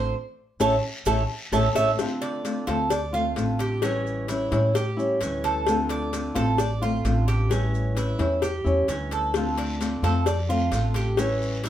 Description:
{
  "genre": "latin, Cuban son and guajira",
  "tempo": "130 BPM",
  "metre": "4/4",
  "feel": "straight",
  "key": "D minor",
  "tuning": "A4 = 438 Hz",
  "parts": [
    { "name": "flamenco guitar", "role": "accompaniment", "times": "0.0-11.7 s", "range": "D3 to F4", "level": "-27 LUFS", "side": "left 1 dB", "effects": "none" },
    { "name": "Cuban tres", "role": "arpeggios", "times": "0.0-11.7 s", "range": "C#4 to E5", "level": "-28 LUFS", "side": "right 3 dB", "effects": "none" },
    { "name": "upright bass", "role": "bass", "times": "0.0-11.7 s", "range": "A1 to A2", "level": "-26 LUFS", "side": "equal", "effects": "none" },
    { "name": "cowbell", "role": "percussion", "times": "0.6-11.7 s", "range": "none", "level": "-31 LUFS", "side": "left 6 dB", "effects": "none" },
    { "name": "guiro", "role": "percussion", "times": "0.6-1.9, 9.3-11.7 s", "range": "none", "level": "-41 LUFS", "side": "left 2 dB", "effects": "none" },
    { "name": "maracas", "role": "percussion", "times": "0.6-11.7 s", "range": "none", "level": "-43 LUFS", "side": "right 5 dB", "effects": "none" }
  ],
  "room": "wet studio reverb, RT60 0.7 s",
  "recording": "heard from further back in the room",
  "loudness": "-22 LUFS",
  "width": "side -11 dB against mid",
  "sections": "0.0-2.0 A section; 2.0-11.7 B section",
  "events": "Cuban tres solo 0.0-2.0; band accent 0.1-2.0",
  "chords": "0.1 A; 2.0 Dm7; 3.8 A7; 5.7 Dm7; 7.5 A7; 9.3 Dm7; 11.2 A7",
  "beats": "| 0.15 0.61 1.07 1.53 | 1.99 2.45 2.91 3.37 | 3.83 4.29 4.75 5.21 | 5.67 6.13 6.59 7.05 | 7.51 7.97 8.43 8.89 | 9.35 9.81 10.27 10.73 | 11.19 11.64"
}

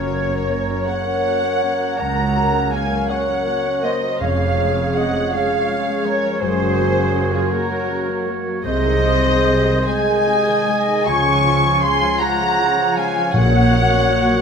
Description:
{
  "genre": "classical",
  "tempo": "48-56 BPM (dotted quarters)",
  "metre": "12/8",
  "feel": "rubato",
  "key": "unclear",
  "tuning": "A4 = 440 Hz",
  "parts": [
    { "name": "muted symphonic violin section", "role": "melody", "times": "0.0-14.4 s", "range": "Ab4 to Db6", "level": "-24 LUFS", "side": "left 4 dB", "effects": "none" },
    { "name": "clear oboe", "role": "second line", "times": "0.0-14.4 s", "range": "C5 to Db5", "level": "-30 LUFS", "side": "right 4 dB", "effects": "none" },
    { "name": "flute section", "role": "second line", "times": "0.0-14.4 s", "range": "Ab4 to Db6", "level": "-25 LUFS", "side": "right 3 dB", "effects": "none" },
    { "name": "mellow clarinet", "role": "second line", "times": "0.0-14.4 s", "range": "F4 to Bb4", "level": "-28 LUFS", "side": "equal", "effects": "none" },
    { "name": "muted symphonic violin section", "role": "second line", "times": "0.0-14.4 s", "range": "Ab4 to Db6", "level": "-28 LUFS", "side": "left 1 dB", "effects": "none" },
    { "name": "muted symphonic viola section", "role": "accompaniment", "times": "0.0-14.4 s", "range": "C3 to Bb4", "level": "-28 LUFS", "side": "right 2 dB", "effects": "none" },
    { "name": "dark French horn section", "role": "sustained chords", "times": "0.0-14.4 s", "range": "F3 to Bb4", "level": "-27 LUFS", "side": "left 2 dB", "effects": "none" },
    { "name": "concert harp", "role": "arpeggios", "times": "0.0-14.4 s", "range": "F2 to Db5", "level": "-27 LUFS", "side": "left 6 dB", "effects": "none" },
    { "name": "dark trumpet section", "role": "stabs", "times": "0.0-14.4 s", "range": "F4 to Ab5", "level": "-23 LUFS", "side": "equal", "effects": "none" },
    { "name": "muted symphonic cello section", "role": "bass", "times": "0.0-14.3 s", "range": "Db2 to Db3", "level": "-24 LUFS", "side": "right 1 dB", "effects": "none" },
    { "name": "muted symphonic double bass section", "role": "bass", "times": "0.0-14.3 s", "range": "F1 to Db2", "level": "-25 LUFS", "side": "right 2 dB", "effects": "none" },
    { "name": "timpani", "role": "percussion", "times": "4.2-5.3, 13.3-14.4 s", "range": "F2 to Bb2", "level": "-22 LUFS", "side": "left 1 dB", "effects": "none" }
  ],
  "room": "wet recital hall reverb, RT60 1.4 s",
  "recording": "minimal, uncompressed stereo recording",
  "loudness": "-16 LUFS",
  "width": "side -6 dB against mid",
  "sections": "0.0-14.4 A section",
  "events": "none",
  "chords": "0.0 Gb; 4.2 Db/F; 6.4 Gb; 8.7 Ab/C; 11.1 Db; 13.3 Gb/Bb",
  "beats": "0.88 2.00 3.10 | 4.22 5.34 6.41 7.51 | 8.65 9.87 11.07 12.21 | 13.35"
}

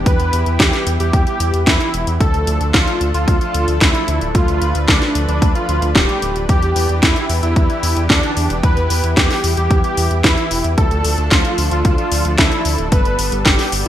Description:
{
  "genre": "italo disco",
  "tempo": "112 BPM",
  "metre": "4/4",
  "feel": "straight",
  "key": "unclear",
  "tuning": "A4 = 440 Hz",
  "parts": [
    { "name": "lush unison pad", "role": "sustained chords", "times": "0.0-13.9 s", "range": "E3 to B4", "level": "-24 LUFS", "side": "equal", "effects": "chorus" },
    { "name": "round analog bass", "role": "bass", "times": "0.0-13.9 s", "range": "D1 to E2", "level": "-19 LUFS", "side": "equal", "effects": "tube saturation" },
    { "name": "wide unison lead", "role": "melody", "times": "0.1-13.9 s", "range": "D4 to B4", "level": "-20 LUFS", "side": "equal", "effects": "digital delay" },
    { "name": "electronic kick drum", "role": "drums", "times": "0.1-13.6 s", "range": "none", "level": "-16 LUFS", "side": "equal", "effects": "overdrive, studio reverb" },
    { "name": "house drum kit", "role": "drums", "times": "0.1-13.9 s", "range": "hi-hat, snare drum", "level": "-18 LUFS", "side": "equal", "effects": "overdrive, studio reverb, gated reverb" }
  ],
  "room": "light reverb",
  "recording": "bright 1980s-style digital production",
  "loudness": "-13 LUFS",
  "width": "side -11 dB against mid",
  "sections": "0.0-13.9 A section",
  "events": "none",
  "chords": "0.0 Em; 2.2 Dm; 6.5 Em7; 10.8 Dm; 12.9 Gadd9",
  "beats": "| 0.06 0.60 1.13 1.67 | 2.21 2.74 3.28 3.81 | 4.35 4.88 5.42 5.96 | 6.49 7.03 7.56 8.10 | 8.63 9.17 9.71 10.24 | 10.78 11.31 11.85 12.38 | 12.92 13.46"
}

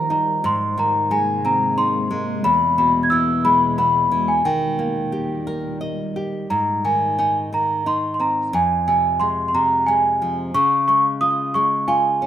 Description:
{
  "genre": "children's music, lullaby",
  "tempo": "89 BPM",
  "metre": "3/4",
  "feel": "straight",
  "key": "unclear",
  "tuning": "A4 = 440 Hz",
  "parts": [
    { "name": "large celesta", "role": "melody", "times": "0.0-12.3 s", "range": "G5 to G#6", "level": "-18 LUFS", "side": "equal", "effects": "slapback echo" },
    { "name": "nylon-string guitar", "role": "accompaniment", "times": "0.0-12.3 s", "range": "E2 to Eb5", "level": "-25 LUFS", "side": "left 1 dB", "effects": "none" },
    { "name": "ethereal airy pad", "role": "sustained chords", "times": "0.0-6.5 s", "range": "Eb2 to Bb3", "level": "-30 LUFS", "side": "equal", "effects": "ensemble chorus, built-in reverb" }
  ],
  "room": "light reverb, small room ambience",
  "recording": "rough home demo mix",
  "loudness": "-17 LUFS",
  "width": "side -10 dB against mid",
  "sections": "0.0-6.5 A section; 6.5-12.3 B section",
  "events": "none",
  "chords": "0.4 Abadd9; 2.4 E; 4.4 Eb; 6.5 Ab; 8.5 Fm; 10.6 Db",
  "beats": "| 0.43 1.10 1.77 | 2.44 3.11 3.78 | 4.44 5.12 5.81 | 6.50 7.18 7.86 | 8.54 9.21 9.88 | 10.55 11.22 11.89"
}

